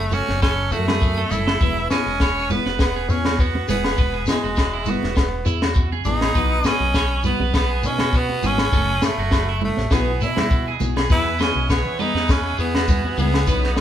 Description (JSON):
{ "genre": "highlife guitar band", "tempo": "101 BPM", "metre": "4/4", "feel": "swing 53% on 16ths", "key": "unclear", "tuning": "A4 = 442 Hz", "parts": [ { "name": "raspy tenor saxophone", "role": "melody", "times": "0.0-13.8 s", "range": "G#3 to E4", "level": "-24 LUFS", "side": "right 1 dB", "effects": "none" }, { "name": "fingered electric bass", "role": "bass", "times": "0.0-13.8 s", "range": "E1 to E3", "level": "-24 LUFS", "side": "equal", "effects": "none" }, { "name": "fingerpicked steel-string acoustic guitar", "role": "accompaniment", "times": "0.1-13.8 s", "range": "E3 to B4", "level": "-30 LUFS", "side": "left 6 dB", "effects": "none" }, { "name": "electric guitar at the edge of break-up", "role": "arpeggios", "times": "0.1-13.8 s", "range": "D#4 to E5", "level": "-27 LUFS", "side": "right 7 dB", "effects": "spring reverb" }, { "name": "congas", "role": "percussion", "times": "0.1-13.8 s", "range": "none", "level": "-29 LUFS", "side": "right 4 dB", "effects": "none" }, { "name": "shekere", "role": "percussion", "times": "0.1-13.8 s", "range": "none", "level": "-32 LUFS", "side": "left 2 dB", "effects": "none" }, { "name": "compact cocktail drum kit", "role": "drums", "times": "0.3-13.8 s", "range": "kick drum, snare drum", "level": "-21 LUFS", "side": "left 1 dB", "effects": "none" }, { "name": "agogo bells", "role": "percussion", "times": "0.4-13.8 s", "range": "none", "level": "-31 LUFS", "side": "left 6 dB", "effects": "none" }, { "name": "combo organ", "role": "sustained chords", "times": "11.1-13.8 s", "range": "C#5 to B5", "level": "-35 LUFS", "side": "left 1 dB", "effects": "none" } ], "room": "moderate large studio reverb, RT60 0.9 s", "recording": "band playing live in one room", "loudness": "-17 LUFS", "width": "side -10 dB against mid", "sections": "0.0-11.1 A section; 11.1-13.8 B section", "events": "none", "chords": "0.0 F#m; 1.6 Eadd9; 6.4 B; 8.7 F#m; 9.9 Bsus4; 11.1 Badd9" }